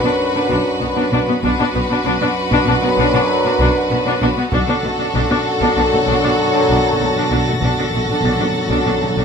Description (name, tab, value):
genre	cinematic, suspense film score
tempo	97 BPM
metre	5/4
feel	straight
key	unclear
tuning	A4 = 441 Hz
part	clear studio violin section	melody	0.0-9.2 s	A4 to B4	-23 LUFS	left 1 dB	none
part	warm symphonic violin section	second line	0.0-9.2 s	F#4	-23 LUFS	left 1 dB	none
part	clear symphonic viola section	accompaniment	0.0-9.2 s	A3 to D4	-21 LUFS	left 1 dB	none
part	warm French horn section	sustained chords	0.0-9.2 s	D4 to B4	-21 LUFS	equal	none
part	warm trombone section	sustained chords	0.0-9.2 s	F#2 to F#3	-23 LUFS	equal	none
part	rich symphonic cello section	bass	0.0-9.2 s	B2	-23 LUFS	right 1 dB	none
part	dark grand piano	texture	0.0-9.2 s	none	barely audible	none	none
part	rich symphonic double bass section	bass	0.5-9.2 s	B1	-23 LUFS	right 1 dB	none
part	taiko ensemble	drums	0.5-9.2 s	none	-28 LUFS	equal	none
part	timpani	percussion	4.5-9.2 s	B2	-24 LUFS	right 1 dB	none
part	rich chamber violin section	texture	4.5-9.2 s	A6 to A#6	-29 LUFS	equal	none
room	moderate stone room reverb, RT60 1.0 s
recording	none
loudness	-14 LUFS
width	side -6 dB against mid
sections	0.0-9.2 A section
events	timpani fill 4.5-9.2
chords	0.0 D/B